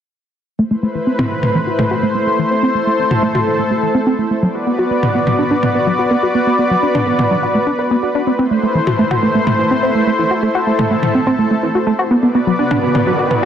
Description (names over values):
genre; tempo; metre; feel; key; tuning
melodic techno; 125 BPM; 4/4; straight; A dorian; A4 = 440 Hz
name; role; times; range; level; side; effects
lush unison pad; sustained chords; 0.7-13.5 s; A3 to D5; -16 LUFS; left 1 dB; chorus
tight sequenced synth; arpeggios; 0.6-13.5 s; E3 to B4; -16 LUFS; right 1 dB; chorus, cassette tape, dub echo
electronic toms; drums; 1.2-13.4 s; none; -21 LUFS; left 1 dB; none
riser; sound effects; 12.4-13.5 s; none; -23 LUFS; left 2 dB; none
room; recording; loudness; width
light reverb; dense, heavily limited modern master; -13 LUFS; side -9 dB against mid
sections
0.6-13.5 A section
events
filter sweep on synth arpeggio sound 0.6-13.5; riser 12.4-13.5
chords
0.6 Am; 4.4 Bm; 8.3 Am; 12.1 Bm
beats
| 0.59 1.07 1.55 2.03 | 2.51 2.99 3.47 3.95 | 4.43 4.91 5.39 5.87 | 6.35 6.83 7.31 7.79 | 8.27 8.75 9.23 9.71 | 10.19 10.67 11.15 11.63 | 12.11 12.59 13.07